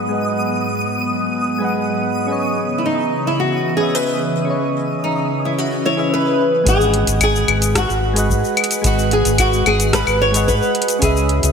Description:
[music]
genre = sunset chillout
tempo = 110 BPM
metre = 4/4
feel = straight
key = unclear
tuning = A4 = 440 Hz
[part]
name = soft electric-piano-like synth keys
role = accompaniment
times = 0.0-11.5 s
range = G#3 to F#5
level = -22 LUFS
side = right 1 dB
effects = chorus, auto-pan, low-pass filter, digital delay
[part]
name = ethereal airy pad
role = sustained chords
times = 0.0-11.5 s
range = G#2 to B4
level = -23 LUFS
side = equal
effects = ensemble chorus, built-in reverb, vintage 12-bit sampler grit
[part]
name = twinkling granular texture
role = texture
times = 0.0-6.7 s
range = D#6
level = -27 LUFS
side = left 1 dB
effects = built-in reverb, ensemble chorus
[part]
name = flamenco guitar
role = melody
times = 2.8-11.5 s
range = D#4 to C#5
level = -19 LUFS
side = equal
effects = wide subtle chorus, digital delay
[part]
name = fingered electric bass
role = bass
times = 6.7-11.5 s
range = G#1 to G#2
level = -19 LUFS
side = equal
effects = tube saturation
[part]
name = deep house drum kit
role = drums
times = 6.7-11.5 s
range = cabasa, claves, hi-hat, rim click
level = -20 LUFS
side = left 4 dB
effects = overdrive, low-pass filter on perc, low-pass filter on snare, low-pass filter on hats, gated reverb
[part]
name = electronic kick drum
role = drums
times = 6.7-11.1 s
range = none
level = -22 LUFS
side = equal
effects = none
[sound]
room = wet lush hall reverb, RT60 1.8 s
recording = bright 1980s-style digital production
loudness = -15 LUFS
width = side -6 dB against mid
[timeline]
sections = 0.0-6.7 A section; 6.7-11.5 B section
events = filter sweep on synth keys 0.0-6.7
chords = 0.0 G#m7; 2.3 C#m7; 6.4 G#m7

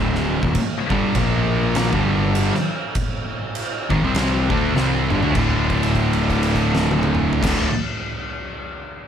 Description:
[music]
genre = stoner and doom metal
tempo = 100 BPM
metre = 4/4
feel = swing 58% on 8ths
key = D minor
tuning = A4 = 441 Hz
[part]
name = thick fuzz guitar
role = riff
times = 0.0-7.7 s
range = D2 to D4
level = -23 LUFS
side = left 8 dB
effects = distortion
[part]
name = thick fuzz guitar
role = riff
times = 0.0-7.7 s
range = D2 to D4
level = -23 LUFS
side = right 7 dB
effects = distortion
[part]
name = fuzz picked electric bass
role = bass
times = 0.0-7.7 s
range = D1 to D2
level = -24 LUFS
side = equal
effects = overdrive
[part]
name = oversized low-tuned drum kit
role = drums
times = 0.1-7.6 s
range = crash cymbal, kick drum, snare drum, toms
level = -23 LUFS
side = equal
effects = none
[part]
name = tight distorted guitar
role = riff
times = 0.9-7.7 s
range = D2 to D4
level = -24 LUFS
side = equal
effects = distortion
[sound]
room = light reverb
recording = none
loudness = -17 LUFS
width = side -8 dB against mid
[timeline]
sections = 0.0-5.4 A section; 5.4-7.7 B section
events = drum fill 4.8-5.4; held note 5.4-7.4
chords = 0.0 D5; 0.9 G5; 1.2 Bb5; 1.9 G5; 5.4 D5

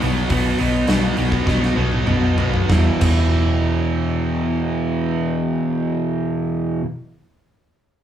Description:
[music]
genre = hard rock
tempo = 94-107 BPM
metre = 4/4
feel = straight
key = unclear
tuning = A4 = 440 Hz
[part]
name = cranked stack guitar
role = riff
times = 0.0-6.8 s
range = E2 to B3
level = -23 LUFS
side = right 5 dB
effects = overdrive
[part]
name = sludgy distorted guitar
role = riff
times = 0.0-6.9 s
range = E2 to B3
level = -22 LUFS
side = left 3 dB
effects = overdrive
[part]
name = hollow-body short-scale picked electric bass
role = bass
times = 0.0-6.8 s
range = E1 to B1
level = -21 LUFS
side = equal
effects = none
[part]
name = huge arena drum kit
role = drums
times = 0.0-3.2 s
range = crash cymbal, hi-hat, kick drum, snare drum, toms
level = -22 LUFS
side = equal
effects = none
[sound]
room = moderate studio reverb, RT60 0.7 s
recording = band playing live in one room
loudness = -17 LUFS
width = side -10 dB against mid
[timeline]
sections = 0.0-2.7 A section; 2.7-7.8 B section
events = slowing down 0.0-2.7; drum fill 1.5-2.7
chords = 0.0 B5; 2.7 E5

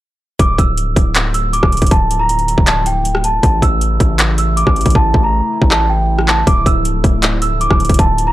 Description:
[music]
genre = hip hop, trap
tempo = 158 BPM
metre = 4/4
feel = half-time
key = D harmonic minor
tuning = A4 = 439 Hz
[part]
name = large celesta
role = melody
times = 0.4-8.3 s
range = G5 to E6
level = -17 LUFS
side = right 1 dB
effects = none
[part]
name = hollow soft pad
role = sustained chords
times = 0.4-8.3 s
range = C#3 to E4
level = -24 LUFS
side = equal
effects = chorus
[part]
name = distorted 808-style bass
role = bass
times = 0.4-8.3 s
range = D1 to A1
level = -17 LUFS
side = equal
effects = distortion
[part]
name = trap drum kit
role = drums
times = 0.4-8.3 s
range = handclaps, hi-hat, kick drum, rim click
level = -14 LUFS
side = equal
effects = overdrive
[sound]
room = little or no reverb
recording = dry, gritty hardware recording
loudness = -11 LUFS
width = side -15 dB against mid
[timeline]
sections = 0.4-8.3 A section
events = hi-hats muted 5.0-6.5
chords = 0.4 Dmadd9; 3.4 A; 6.5 Dmadd9

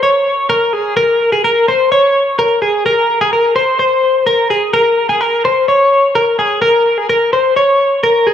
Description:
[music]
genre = indie pop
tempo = 127 BPM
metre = 4/4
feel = straight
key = unclear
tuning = A4 = 440 Hz
[part]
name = twelve-string electric guitar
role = solo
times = 0.0-8.3 s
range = Ab4 to Db5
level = -10 LUFS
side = left 1 dB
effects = vibrato effect, dub echo
[sound]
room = moderate echo chamber reverb, RT60 1.8 s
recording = echo-heavy mix, small room reverb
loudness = -10 LUFS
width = side -9 dB against mid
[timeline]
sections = 0.0-6.6 A section; 6.6-8.3 B section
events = none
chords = none

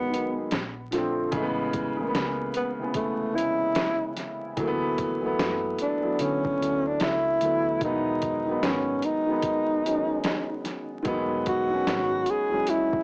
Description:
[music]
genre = lo-fi hip hop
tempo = 74 BPM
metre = 4/4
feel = swing 61% on 16ths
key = E major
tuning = A4 = 441 Hz
[part]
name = breathy tenor saxophone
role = melody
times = 0.0-13.0 s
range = A3 to G#4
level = -28 LUFS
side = equal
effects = cassette tape, analog delay
[part]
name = warm upright piano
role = accompaniment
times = 0.0-13.0 s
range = C3 to G#4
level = -31 LUFS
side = equal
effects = cassette tape
[part]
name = boom bap sampler-style drum kit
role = drums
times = 0.1-13.0 s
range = hi-hat, kick drum, snare drum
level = -33 LUFS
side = equal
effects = vintage 12-bit sampler grit
[part]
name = vintage muted fingered electric bass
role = bass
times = 0.5-12.2 s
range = E1 to D3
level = -42 LUFS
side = equal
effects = none
[sound]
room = wet small room reverb, RT60 0.5 s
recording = home recording on cassette, vinyl crackle, small speaker sound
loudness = -27 LUFS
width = mono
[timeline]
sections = 0.0-13.0 A section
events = none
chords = 0.0 Emaj9 (rootless); 0.5 A#maj7; 1.3 Amaj7; 4.6 D69; 7.8 Emaj9

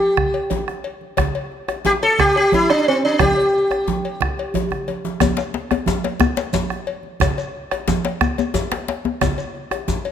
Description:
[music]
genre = west african traditional, West African drum ensemble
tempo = 120 BPM (dotted quarters)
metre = 12/8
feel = straight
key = unclear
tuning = A4 = 440 Hz
[part]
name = sitar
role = melody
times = 0.0-4.5 s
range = C4 to A4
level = -17 LUFS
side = equal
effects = none
[part]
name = bombo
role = percussion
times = 0.2-9.9 s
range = none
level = -23 LUFS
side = right 3 dB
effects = none
[part]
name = congas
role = percussion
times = 0.2-10.0 s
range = none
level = -26 LUFS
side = right 7 dB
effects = none
[part]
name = cowbell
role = percussion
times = 0.3-10.1 s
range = none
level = -29 LUFS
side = left 8 dB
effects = none
[part]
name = djembe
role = percussion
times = 0.5-10.0 s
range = none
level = -27 LUFS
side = left 5 dB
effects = none
[part]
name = djembe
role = percussion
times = 5.2-9.4 s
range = none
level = -22 LUFS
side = left 8 dB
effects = none
[part]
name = shekere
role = percussion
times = 5.2-10.0 s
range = none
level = -30 LUFS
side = right 1 dB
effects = none
[sound]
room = moderate recital hall reverb, RT60 1.8 s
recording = none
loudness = -17 LUFS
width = side -9 dB against mid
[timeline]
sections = 0.0-5.2 A section; 5.2-10.1 B section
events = drum fill 4.7-5.2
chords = none

